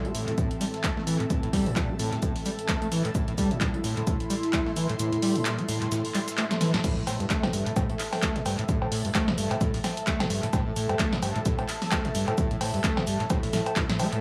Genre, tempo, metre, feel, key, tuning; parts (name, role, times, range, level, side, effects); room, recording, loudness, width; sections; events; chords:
acid house; 130 BPM; 4/4; swing 57% on 16ths; A minor; A4 = 440 Hz
warbly tape-like pad; sustained chords; 0.1-6.8 s; A2 to E4; -36 LUFS; equal; chorus, built-in reverb, phaser, sidechain pumping
overdriven acid bass; riff; 0.0-14.2 s; G2 to A3; -31 LUFS; equal; distortion, lush chorus, tape echo
breakbeat sampler-style drum kit; drums; 0.0-14.2 s; hi-hat, shaker, snare drum; -44 LUFS; equal; overdrive, sidechain pumping on perc, high-pass filter on perc, high-pass filter on snare, sidechain pumping on hats, high-pass filter on hats, high-pass filter on room, analog delay
airy breathy pad; texture; 0.0-14.2 s; A4 to C6; -37 LUFS; equal; chorus, phaser, sidechain pumping
punchy analog drum machine; drums; 0.1-14.2 s; cowbell, crash cymbal, handclaps, hi-hat, snare drum; -33 LUFS; equal; analog delay
electronic kick drum; drums; 0.4-13.9 s; -32 LUFS; equal
light reverb; echo-heavy mix; -27 LUFS; mono
0.0-6.8 A section; 6.8-14.2 B section
kick drops out 5.0-6.8; drum fill 6.5-6.8; drop 6.8-14.2
0.0 Am; 6.8 A5